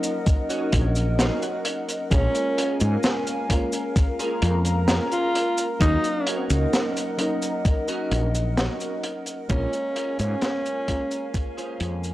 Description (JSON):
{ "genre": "vaporwave", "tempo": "65 BPM", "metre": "4/4", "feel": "straight", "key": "Bb minor", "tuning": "A4 = 440 Hz", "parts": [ { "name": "mellow FM electric piano", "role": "accompaniment", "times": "0.0-12.1 s", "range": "Gb3 to Bb4", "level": "-31 LUFS", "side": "left 1 dB", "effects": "ensemble chorus, tape echo" }, { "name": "warbly tape-like pad", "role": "sustained chords", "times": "0.0-12.1 s", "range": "Bb4 to Bb5", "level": "-31 LUFS", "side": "equal", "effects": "chorus, built-in reverb, vintage 12-bit sampler grit" }, { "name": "clean electric guitar", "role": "riff", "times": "0.0-11.9 s", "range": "Db4 to Gb5", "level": "-34 LUFS", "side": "right 3 dB", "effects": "ensemble chorus, tape echo" }, { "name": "crunchy breakbeat drum kit", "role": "drums", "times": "0.0-12.1 s", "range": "cabasa, hi-hat, snare drum", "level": "-27 LUFS", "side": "equal", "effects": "none" }, { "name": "electronic kick drum", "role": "drums", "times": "0.3-11.5 s", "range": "none", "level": "-21 LUFS", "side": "equal", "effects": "overdrive" }, { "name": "woody fretless electric bass", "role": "bass", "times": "0.7-12.1 s", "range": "Bb1 to Ab2", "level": "-22 LUFS", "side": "equal", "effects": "none" }, { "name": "clear alto saxophone", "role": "melody", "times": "2.1-11.5 s", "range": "Db4 to F4", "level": "-28 LUFS", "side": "equal", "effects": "vintage 12-bit sampler grit, tape echo" } ], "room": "small room ambience", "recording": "dry, gritty hardware recording, transformer saturation, cassette tape", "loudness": "-21 LUFS", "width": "side -16 dB against mid", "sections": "0.0-12.1 A section", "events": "clean electric guitar fill 0.3-2.1; fade-out 7.0-12.1", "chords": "0.0 Ebm7; 2.1 Bbm7; 5.8 Ebm7; 9.5 Bbm7" }